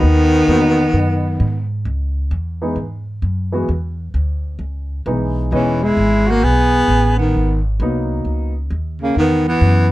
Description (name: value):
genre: jazz, small-group swing and bop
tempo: 131 BPM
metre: 4/4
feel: swing 66% on 8ths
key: unclear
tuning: A4 = 440 Hz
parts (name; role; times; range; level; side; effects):
- breathy baritone saxophone; melody; 0.0-1.7, 5.5-9.9 s; C#3 to B3; -16 LUFS; left 1 dB; none
- breathy tenor saxophone; second line; 0.0-1.7, 5.5-9.9 s; A#3 to G#4; -20 LUFS; right 3 dB; none
- upright bass; bass; 0.0-9.9 s; E1 to G#2; -18 LUFS; equal; none
- warm grand piano; accompaniment; 0.5-8.5 s; E3 to D#5; -22 LUFS; left 1 dB; none
room: light reverb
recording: dark, warm production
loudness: -15 LUFS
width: side -17 dB against mid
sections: 0.0-9.9 A section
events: none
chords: 0.0 G#m7; 1.9 C#m7; 7.3 G#m7; 9.2 Emaj7(no3)